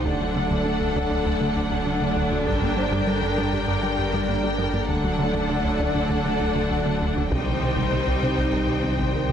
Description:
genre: cinematic, hybrid orchestral and electronic film score.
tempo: 99 BPM.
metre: 4/4.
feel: straight.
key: unclear.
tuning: A4 = 440 Hz.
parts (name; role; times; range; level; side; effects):
warm symphonic violin section; second line; 0.0-9.3 s; A4 to G5; -28 LUFS; left 5 dB; none.
bright symphonic viola section; accompaniment; 0.0-9.3 s; D3 to Eb4; -28 LUFS; right 2 dB; none.
chorused pulse-width pad; sustained chords; 0.0-9.3 s; Eb3 to D5; -30 LUFS; left 1 dB; none.
clear symphonic cello section; bass; 0.0-9.3 s; C2 to G2; -30 LUFS; right 2 dB; none.
sub bass with octave; bass; 0.0-9.3 s; D1 to C2; -32 LUFS; equal; none.
felt-muted upright piano; texture; 0.0-9.3 s; C4 to D5; -37 LUFS; left 2 dB; none.
thumb-piano-like synth pluck; arpeggios; 0.1-9.3 s; C3 to G4; -31 LUFS; left 4 dB; chorus, ping-pong delay.
plucky analog bass; riff; 0.1-9.3 s; C2 to G3; -28 LUFS; right 2 dB; none.
taiko ensemble; drums; 2.5-3.6, 7.3-9.3 s; none; -33 LUFS; equal; none.
room: moderate concert hall reverb, RT60 2.4 s.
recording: none.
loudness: -21 LUFS.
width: side -8 dB against mid.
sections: 0.0-9.3 A section.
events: build-up 0.0-9.3.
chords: 0.0 D; 2.5 Gm; 4.9 D; 7.3 Cm.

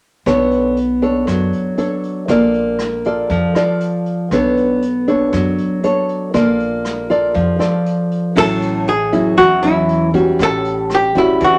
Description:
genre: bossa nova.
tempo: 118 BPM.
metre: 4/4.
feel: straight.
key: A major.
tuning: A4 = 440 Hz.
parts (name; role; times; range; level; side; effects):
nylon-string guitar; accompaniment; 0.3-11.6 s; A2 to D5; -17 LUFS; equal; none.
upright bass; bass; 0.3-11.6 s; A1 to F#2; -28 LUFS; equal; none.
vintage brush drum kit; drums; 0.3-11.5 s; crash cymbal, hi-hat, kick drum, rim click; -32 LUFS; equal; none.
archtop guitar, miked and amplified; melody; 8.4-11.6 s; E4 to A4; -16 LUFS; equal; none.
room: moderate studio reverb, RT60 0.8 s.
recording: none.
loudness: -16 LUFS.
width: mono.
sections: 0.3-8.4 A section; 8.4-11.6 B section.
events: none.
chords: 0.3 Bm9; 2.3 Bbmaj7; 4.3 Bm9; 6.3 Bbmaj7; 8.4 A6.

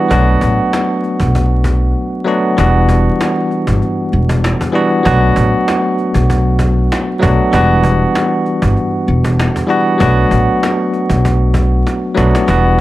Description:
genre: hip hop, boom-bap hip-hop.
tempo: 97 BPM.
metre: 4/4.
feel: swing 56% on 16ths.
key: E minor.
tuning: A4 = 442 Hz.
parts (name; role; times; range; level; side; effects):
bell-like tine electric piano; accompaniment; 0.0-12.8 s; E3 to F#4; -13 LUFS; equal; medium stereo tremolo, high-pass filter, low-pass filter.
upright bass; bass; 0.1-12.8 s; E1 to B1; -13 LUFS; equal; none.
cajon; drums; 0.1-12.8 s; none; -21 LUFS; equal; none.
room: light reverb.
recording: vinyl crackle.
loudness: -11 LUFS.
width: side -16 dB against mid.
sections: 0.0-2.6 A section; 2.6-12.8 B section.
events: break 2.0-2.6; drum fill 11.9-12.5.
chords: 0.1 Bm7; 2.6 Em7; 5.1 Bm7; 7.5 Em7; 10.0 Bm7.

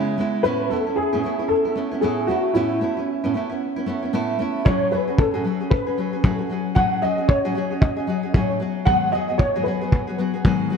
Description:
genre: acoustic pop.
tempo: 114 BPM.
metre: 4/4.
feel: swing 60% on 16ths.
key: unclear.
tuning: A4 = 442 Hz.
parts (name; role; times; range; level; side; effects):
dark upright piano; melody; 0.0-10.8 s; E4 to F#5; -23 LUFS; equal; ensemble chorus, digital delay.
nylon-string guitar; accompaniment; 0.0-10.8 s; G#2 to G#4; -23 LUFS; equal; none.
kick drum; drums; 4.7-10.6 s; none; -18 LUFS; equal; none.
room: moderate lush hall reverb, RT60 2.0 s.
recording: bright 1980s-style digital production.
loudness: -19 LUFS.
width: side -6 dB against mid.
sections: 0.0-10.8 A section.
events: none.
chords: 0.5 Aadd9; 4.7 F#madd9/A; 8.6 G#m7.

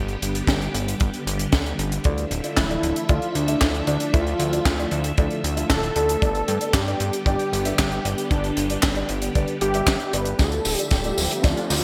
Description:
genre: italo disco.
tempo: 115 BPM.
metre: 4/4.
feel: straight.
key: D dorian.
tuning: A4 = 439 Hz.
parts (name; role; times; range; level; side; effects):
phased string machine; sustained chords; 0.0-11.8 s; D3 to E5; -32 LUFS; equal; ensemble chorus, phaser.
fat analog bass; bass; 0.0-11.8 s; D1 to G2; -29 LUFS; equal; none.
tight funk drum kit; drums; 0.1-11.8 s; handclaps, hi-hat, snare drum, tambourine; -28 LUFS; equal; studio reverb, gated reverb.
kick drum; drums; 0.5-11.5 s; none; -24 LUFS; equal; studio reverb.
dark grand piano; stabs; 2.0-11.6 s; D4 to E5; -33 LUFS; equal; low-pass filter.
unison lead; melody; 2.6-11.8 s; D4 to B4; -28 LUFS; equal; delay.
riser; sound effects; 11.1-11.8 s; none; -35 LUFS; equal; none.
room: moderate lush hall reverb, RT60 1.9 s, small room ambience.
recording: bright 1980s-style digital production.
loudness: -22 LUFS.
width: mono.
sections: 0.0-10.4 A section; 10.4-11.8 B section.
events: drum fill 10.4-11.8; riser 11.1-11.8.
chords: 0.0 G; 2.0 Dmadd9; 6.2 G; 10.4 Dmadd9.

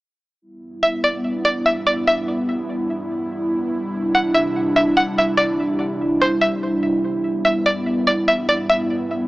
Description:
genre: hip hop.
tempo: 145 BPM.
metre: 4/4.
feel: half-time.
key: G major.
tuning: A4 = 440 Hz.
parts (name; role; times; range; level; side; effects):
airy breathy pad; sustained chords; 0.8-9.3 s; G2 to E4; -21 LUFS; right 1 dB; chorus.
string-like resonator pluck; melody; 0.8-9.3 s; C5 to F#5; -18 LUFS; equal; chorus, low-pass filter, analog delay.
room: light reverb.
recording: dry, gritty hardware recording, small speaker sound.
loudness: -17 LUFS.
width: side -19 dB against mid.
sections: 0.4-9.3 A section.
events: none.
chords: 0.4 G6; 3.7 Cadd9; 7.0 G6.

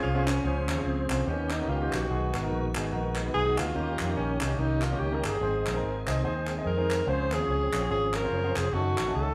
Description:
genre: uptempo gospel.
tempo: 145 BPM.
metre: 4/4.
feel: swing 60% on 8ths.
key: Db major.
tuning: A4 = 444 Hz.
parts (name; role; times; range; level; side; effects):
breathy tenor saxophone; melody; 0.0-9.3 s; C4 to C5; -32 LUFS; equal; none.
clear baby grand piano; accompaniment; 0.0-9.3 s; Ab2 to Eb5; -36 LUFS; equal; none.
tonewheel organ; sustained chords; 0.0-9.3 s; Db3 to Db5; -38 LUFS; equal; slow rotary speaker, chorus vibrato.
fingered electric bass; bass; 0.0-9.3 s; F1 to F2; -33 LUFS; equal; none.
group handclap; percussion; 0.3-9.1 s; none; -39 LUFS; equal; none.
room: moderate large studio reverb, RT60 1.1 s.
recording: band playing live in one room.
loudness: -28 LUFS.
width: mono.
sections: 0.4-9.3 A section.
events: none.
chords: 0.4 Dbmaj7; 1.3 Eb7b13; 2.1 Abm7; 3.8 Eb7; 5.4 Ab; 7.1 Dbmaj7; 8.7 Gbm6.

